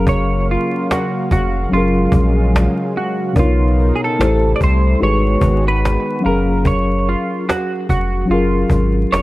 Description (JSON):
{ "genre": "lo-fi hip hop", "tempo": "73 BPM", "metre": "4/4", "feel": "swing 58% on 16ths", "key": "unclear", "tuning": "A4 = 440 Hz", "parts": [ { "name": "semi-hollow electric guitar", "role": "melody", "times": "0.0-9.2 s", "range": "E#4 to D5", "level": "-21 LUFS", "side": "right 2 dB", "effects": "analog chorus, dub echo" }, { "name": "mellow reed electric piano", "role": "accompaniment", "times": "0.0-9.2 s", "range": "B2 to E#5", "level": "-19 LUFS", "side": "left 2 dB", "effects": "fast tremolo" }, { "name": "warm analog pad", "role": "sustained chords", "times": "0.0-6.6 s", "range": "C3 to E#5", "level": "-23 LUFS", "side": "equal", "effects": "chorus" }, { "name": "saturated sub bass", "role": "bass", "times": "0.0-9.2 s", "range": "E#1 to C2", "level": "-17 LUFS", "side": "equal", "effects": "none" }, { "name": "cajon", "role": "drums", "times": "0.1-9.2 s", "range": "none", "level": "-18 LUFS", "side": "equal", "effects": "none" } ], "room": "light reverb", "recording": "echo-heavy mix, vinyl crackle", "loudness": "-14 LUFS", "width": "side -18 dB against mid", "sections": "0.0-9.2 A section", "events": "none", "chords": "0.0 F#maj7; 1.7 F#maj9; 3.4 Bmaj9; 4.2 Am7; 5.0 G#m7; 6.2 F#maj9" }